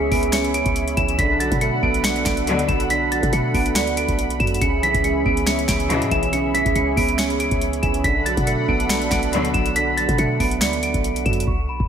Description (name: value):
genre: hip hop, trap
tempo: 140 BPM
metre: 4/4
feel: half-time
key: unclear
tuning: A4 = 440 Hz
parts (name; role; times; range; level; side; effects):
- celesta; melody; 0.0-11.9 s; B5 to E7; -23 LUFS; equal; low-pass filter, ping-pong delay
- dark baby grand piano; accompaniment; 0.0-11.5 s; C#3 to D4; -24 LUFS; right 4 dB; low-pass filter
- warm analog pad; sustained chords; 0.0-11.4 s; C#4 to B5; -27 LUFS; left 1 dB; chorus
- clean 808-style bass; bass; 0.0-11.9 s; B1 to B2; -25 LUFS; equal; none
- booming analog drum machine; drums; 0.1-11.9 s; finger snaps, hi-hat, kick drum, snare drum; -24 LUFS; equal; none
- bright symphonic string section; stabs; 2.5-2.8, 5.9-6.2, 9.3-9.6 s; B2 to F#3; -25 LUFS; left 3 dB; none
room: moderate lush hall reverb, RT60 1.8 s, small room ambience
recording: dreamy mix soaked in reverb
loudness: -17 LUFS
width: side -8 dB against mid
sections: 0.0-11.5 A section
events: hi-hats muted 11.5-11.9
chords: 0.0 C#m7; 1.2 Bm7; 4.6 C#m7; 8.0 Bm7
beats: 0.33 0.76 | 1.19 1.62 2.04 2.47 | 2.90 3.33 3.76 4.19 | 4.62 5.04 5.47 5.90 | 6.33 6.76 7.19 7.62 | 8.04 8.47 8.90 9.33 | 9.76 10.19 10.62 11.04 | 11.47